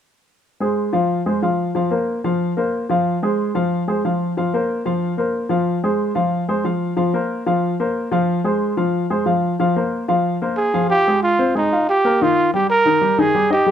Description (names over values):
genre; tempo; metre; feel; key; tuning
jazz; 184 BPM; 4/4; straight; F minor; A4 = 440 Hz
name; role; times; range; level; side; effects
warm baby grand piano; accompaniment; 0.6-13.7 s; Eb3 to F5; -18 LUFS; left 1 dB; none
breathy trumpet; melody; 10.6-13.7 s; Eb4 to Bb4; -15 LUFS; right 2 dB; none
room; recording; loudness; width
light reverb; close, detailed microphones; -16 LUFS; side -9 dB against mid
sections
0.4-10.9 A section; 10.9-13.7 B section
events
none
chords
0.4 Fm; 1.7 Bbsus2; 3.1 Fm; 4.4 Bbsus2; 5.7 Fm; 7.0 Bbsus2; 8.3 Fm; 9.6 Bbsus2; 10.9 Fm11; 12.2 Ebadd9